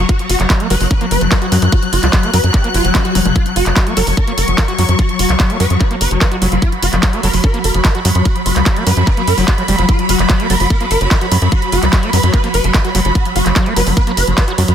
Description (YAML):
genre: psychedelic trance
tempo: 147 BPM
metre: 4/4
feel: straight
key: F# major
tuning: A4 = 440 Hz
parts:
  - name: swarming rave lead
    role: melody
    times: 0.0-14.7 s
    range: F#3 to B4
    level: -19 LUFS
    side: equal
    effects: chorus, phaser, sidechain pumping, dub echo
  - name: evolving wavetable pad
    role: sustained chords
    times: 0.0-14.7 s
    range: F#3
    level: -22 LUFS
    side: left 4 dB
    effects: phaser, built-in reverb, sidechain pumping
  - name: tight sequencer bass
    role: bass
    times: 0.0-14.7 s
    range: F#1 to F#2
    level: -15 LUFS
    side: equal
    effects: none
  - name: warm symphonic string section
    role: texture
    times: 0.0-14.7 s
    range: B5 to F#6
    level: -22 LUFS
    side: right 2 dB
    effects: sidechain pumping
  - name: overdriven acid bass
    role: riff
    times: 0.1-14.6 s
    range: E#3 to F#4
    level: -23 LUFS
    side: right 1 dB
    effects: auto-pan, sidechain pumping, dub echo
  - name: drum and bass drum kit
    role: drums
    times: 0.1-14.7 s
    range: handclaps, hi-hat, toms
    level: -20 LUFS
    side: right 1 dB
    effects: none
  - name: electronic kick drum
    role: drums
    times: 0.1-14.5 s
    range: none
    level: -14 LUFS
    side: equal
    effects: none
  - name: swell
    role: sound effects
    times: 2.7-3.4 s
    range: none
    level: -26 LUFS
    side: left 1 dB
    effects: none
room: light reverb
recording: dense, heavily limited modern master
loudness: -11 LUFS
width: side -9 dB against mid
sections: 0.0-14.7 A section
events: swell 2.7-3.4; drum fill 3.2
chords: 0.0 F#5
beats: | 0.09 0.50 0.91 1.32 | 1.72 2.13 2.54 2.95 | 3.36 3.77 4.17 4.58 | 4.99 5.40 5.80 6.21 | 6.62 7.03 7.44 7.85 | 8.25 8.66 9.07 9.48 | 9.89 10.29 10.70 11.11 | 11.52 11.93 12.34 12.74 | 13.15 13.56 13.97 14.38